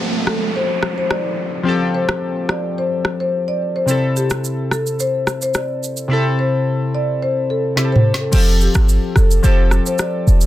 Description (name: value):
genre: afrobeats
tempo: 108 BPM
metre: 4/4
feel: straight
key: unclear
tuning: A4 = 445 Hz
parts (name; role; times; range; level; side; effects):
- warm analog keys; accompaniment; 0.0-10.5 s; C3 to A4; -20 LUFS; left 2 dB; chorus
- downlifter; sound effects; 0.0-3.9 s; none; -25 LUFS; right 3 dB; none
- marimba with medium mallets; melody; 0.3-10.4 s; G4 to D5; -22 LUFS; left 2 dB; none
- afro-pop drum kit; drums; 0.3-10.5 s; crash cymbal, rim click, shaker, snare drum, toms; -19 LUFS; right 1 dB; soft clipping on snare
- clean 808-style bass; bass; 8.3-10.5 s; E1 to G1; -12 LUFS; equal; none
room: moderate small room ambience, RT60 0.5 s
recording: dense, heavily limited modern master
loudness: -15 LUFS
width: side -14 dB against mid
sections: 0.0-8.3 A section; 8.3-10.5 B section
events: drum fill 7.8-8.3; kick muted 8.3-10.5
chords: 0.0 Fadd9; 3.9 C6; 8.3 Fadd9